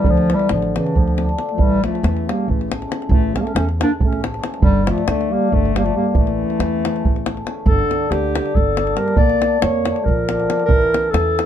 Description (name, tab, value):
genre	balkan folk, Balkan wedding band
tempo	276 BPM (eighths)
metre	7/8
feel	straight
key	A phrygian dominant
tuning	A4 = 440 Hz
part	dark clarinet	melody	0.0-11.5 s	E3 to D5	-20 LUFS	left 1 dB	none
part	mellow French horn	second line	0.0-11.5 s	C#3 to Bb3	-24 LUFS	right 5 dB	none
part	cimbalom	accompaniment	0.0-11.5 s	C#3 to D4	-25 LUFS	left 7 dB	none
part	davul	percussion	0.0-11.5 s	none	-20 LUFS	right 1 dB	none
part	upright bass	bass	0.1-11.4 s	G1 to F2	-22 LUFS	equal	none
room	light reverb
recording	none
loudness	-15 LUFS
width	side -10 dB against mid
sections	0.0-7.7 A section; 7.7-11.5 B section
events	none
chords	0.1 Dm; 1.6 A; 4.6 Gm; 6.1 A; 7.7 Gm; 9.2 Bb; 10.7 A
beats	| 0.05 0.27 0.49 0.71 0.92 1.14 1.36 | 1.58 1.79 2.01 2.23 2.45 2.67 2.88 | 3.10 3.32 3.54 3.75 3.97 4.19 4.40 | 4.62 4.84 5.06 5.27 5.49 5.71 5.92 | 6.14 6.36 6.58 6.79 7.01 7.22 7.44 | 7.66 7.88 8.09 8.31 8.52 8.74 8.96 | 9.17 9.39 9.60 9.82 10.04 10.25 10.47 | 10.68 10.90 11.12 11.33